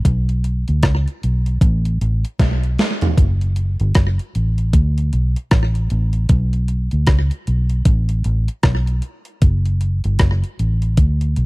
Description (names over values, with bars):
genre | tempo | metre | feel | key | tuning
lovers rock reggae | 77 BPM | 4/4 | swing 60% on 16ths | unclear | A4 = 442 Hz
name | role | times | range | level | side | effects
vintage muted fingered electric bass | bass | 0.0-11.5 s | F#1 to D2 | -17 LUFS | equal | none
gated 80s digital drum machine | drums | 0.1-11.5 s | hi-hat, kick drum, rim click, snare drum, toms | -15 LUFS | equal | gated reverb, gated reverb snare, slapback echo
room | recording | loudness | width
little or no reverb | dry, close 1970s-style studio recording | -15 LUFS | side -22 dB against mid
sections
0.0-11.5 A section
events
drum fill 2.4-3.2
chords
none